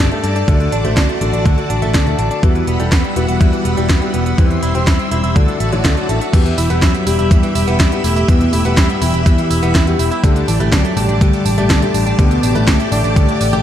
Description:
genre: italo disco.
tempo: 123 BPM.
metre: 4/4.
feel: straight.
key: E minor.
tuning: A4 = 439 Hz.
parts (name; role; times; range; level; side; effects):
string machine, full ensemble; sustained chords; 0.0-13.6 s; G3 to E6; -22 LUFS; left 1 dB; ensemble chorus.
direct-recorded clean electric guitar; arpeggios; 0.0-13.6 s; D3 to G4; -23 LUFS; right 4 dB; low-pass filter, ping-pong delay.
dark grand piano; stabs; 0.0-13.6 s; G2 to C5; -21 LUFS; left 4 dB; ping-pong delay.
picked electric bass; bass; 0.0-13.6 s; E1 to G2; -18 LUFS; equal; tube saturation.
house drum kit; drums; 0.1-13.6 s; crash cymbal, hi-hat, snare drum, tambourine; -22 LUFS; right 1 dB; studio reverb.
electronic kick drum; drums; 0.5-13.3 s; none; -14 LUFS; equal; overdrive, studio reverb.
soft octave-layered synth lead; melody; 6.6-13.6 s; E3 to B3; -19 LUFS; left 1 dB; chorus, tremolo.
room: light reverb, digital ambience.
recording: dark, warm production.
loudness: -12 LUFS.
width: side -10 dB against mid.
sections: 0.0-6.3 A section; 6.3-13.6 B section.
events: none.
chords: 0.5 D; 2.4 Emadd9; 4.4 C/E; 5.4 Dadd9; 6.3 Em; 10.2 Dsus4.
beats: | 0.48 0.97 1.46 1.94 | 2.43 2.92 3.41 3.90 | 4.38 4.87 5.36 5.85 | 6.33 6.82 7.31 7.80 | 8.29 8.77 9.26 9.75 | 10.24 10.72 11.21 11.70 | 12.19 12.68 13.16.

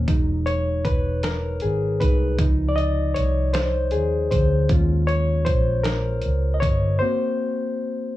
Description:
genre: slow six-eight R&B.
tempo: 52 BPM (dotted quarters).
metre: 6/8.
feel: straight.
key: Db major.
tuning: A4 = 440 Hz.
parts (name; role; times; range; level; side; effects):
barky reed electric piano; accompaniment; 0.0-8.2 s; C3 to Eb5; -23 LUFS; left 2 dB; overdrive, plate reverb.
vintage muted fingered electric bass; bass; 0.0-7.0 s; E1 to Eb2; -22 LUFS; equal; none.
dusty soul sampler-style drum kit; drums; 0.1-6.8 s; hi-hat, kick drum, snare drum; -23 LUFS; equal; none.
room: light reverb.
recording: small room ambience.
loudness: -19 LUFS.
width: side -15 dB against mid.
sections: 0.0-8.2 A section.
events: reed electric piano solo 0.0-8.2; break 7.0-8.2.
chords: 0.1 Emaj9; 2.4 Dbmaj7; 4.7 Ebm11; 7.0 Bbsus2.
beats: | 0.08 1.24 | 2.39 3.54 | 4.70 5.85 | 7.01 8.16.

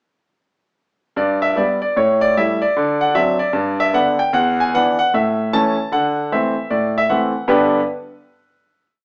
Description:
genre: jazz, stride piano.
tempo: 152 BPM.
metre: 4/4.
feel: swing 62% on 8ths.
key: G major.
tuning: A4 = 440 Hz.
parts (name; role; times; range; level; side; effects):
clear concert grand piano; solo; 1.2-7.8 s; E2 to A5; -18 LUFS; equal; none.
room: moderate large studio reverb, RT60 0.9 s.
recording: band playing live in one room, small speaker sound.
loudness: -17 LUFS.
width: mono.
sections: 1.2-7.5 A section; 7.5-9.0 final chord.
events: none.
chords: 1.2 G; 2.0 A5; 2.8 D7; 3.5 G; 4.3 E5; 5.1 A; 5.9 D9; 7.5 G.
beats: | 1.17 1.57 1.97 2.36 | 2.75 3.15 3.54 3.94 | 4.33 4.73 5.12 5.52 | 5.91 6.31 6.70 7.10 | 7.49.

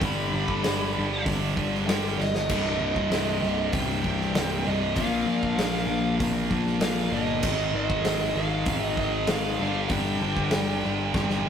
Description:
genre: hard rock.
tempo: 97 BPM.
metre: 4/4.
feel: straight.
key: unclear.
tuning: A4 = 441 Hz.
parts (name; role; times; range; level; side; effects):
bluesy overdriven lead guitar; melody; 0.0-11.5 s; Eb5 to B5; -31 LUFS; right 1 dB; distortion.
crunchy overdriven guitar; riff; 0.0-11.5 s; C2 to Bb3; -30 LUFS; left 4 dB; none.
distorted electric guitar; riff; 0.0-11.5 s; C2 to Bb3; -36 LUFS; equal; overdrive.
heavy high-gain guitar; riff; 0.0-11.5 s; C2 to Bb3; -30 LUFS; right 6 dB; distortion.
fuzz picked electric bass; bass; 0.0-11.5 s; C1 to Bb1; -30 LUFS; equal; overdrive.
big rock drum kit; drums; 0.0-11.4 s; crash cymbal, hi-hat, kick drum, snare drum; -30 LUFS; equal; none.
room: wet studio reverb, RT60 0.6 s.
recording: rough rehearsal-room recording, tube saturation.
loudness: -23 LUFS.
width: side -8 dB against mid.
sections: 0.0-11.5 A section.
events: drum fill 2.2-2.5, 11.2-11.5.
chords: 0.0 G; 2.5 Cm; 5.0 Bb5; 7.4 Ab5; 9.6 G5.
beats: | 0.03 0.65 1.27 1.89 | 2.51 3.12 3.74 4.36 | 4.98 5.60 6.21 6.83 | 7.45 8.06 8.68 9.30 | 9.92 10.54 11.16.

